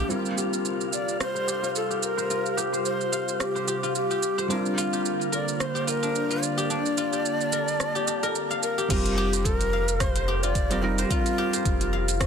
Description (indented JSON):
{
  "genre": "organic downtempo",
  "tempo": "109 BPM",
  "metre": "4/4",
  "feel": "swing 56% on 16ths",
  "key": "unclear",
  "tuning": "A4 = 439 Hz",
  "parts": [
    { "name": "breathy low Native American-style wooden flute", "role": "melody", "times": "0.0-12.2 s", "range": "Eb4 to D5", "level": "-29 LUFS", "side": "equal", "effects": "ping-pong delay" },
    { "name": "warbly tape-like pad", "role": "sustained chords", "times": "0.0-8.9 s", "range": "C3 to A5", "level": "-33 LUFS", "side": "right 2 dB", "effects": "chorus, built-in reverb, phaser, vintage 12-bit sampler grit, sidechain pumping" },
    { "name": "guzheng", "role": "arpeggios", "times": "0.0-12.3 s", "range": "D4 to F5", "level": "-29 LUFS", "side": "left 4 dB", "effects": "low-pass filter, ping-pong delay" },
    { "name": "warm sub bass", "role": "bass", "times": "0.0, 8.9-12.3 s", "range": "F1", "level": "-28 LUFS", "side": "equal", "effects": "sidechain pumping" },
    { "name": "wind-like tuned noise texture", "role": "texture", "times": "0.0-8.9 s", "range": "F4 to F5", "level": "-39 LUFS", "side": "equal", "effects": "built-in reverb" },
    { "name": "felt-muted upright piano", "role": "accompaniment", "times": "0.1-12.3 s", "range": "G3 to Bb4", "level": "-33 LUFS", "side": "right 2 dB", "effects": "sidechain pumping, ping-pong delay" },
    { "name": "afro-pop drum kit", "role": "drums", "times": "0.1-12.3 s", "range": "crash cymbal, hi-hat, rim click, shaker", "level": "-31 LUFS", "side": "right 4 dB", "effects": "soft clipping on snare" },
    { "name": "electronic kick drum", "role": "drums", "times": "8.9-12.3 s", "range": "none", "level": "-27 LUFS", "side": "equal", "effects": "none" }
  ],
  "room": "light reverb, small room ambience",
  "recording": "dense, heavily limited modern master",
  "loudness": "-23 LUFS",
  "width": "side -7 dB against mid",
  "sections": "0.1-8.9 A section; 8.9-12.3 B section",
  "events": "filter sweep on guzheng 0.1-8.9; filter sweep on ambient pad 0.1-8.9",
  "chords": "0.1 Fsus2; 4.5 Bb6; 8.9 Fsus2"
}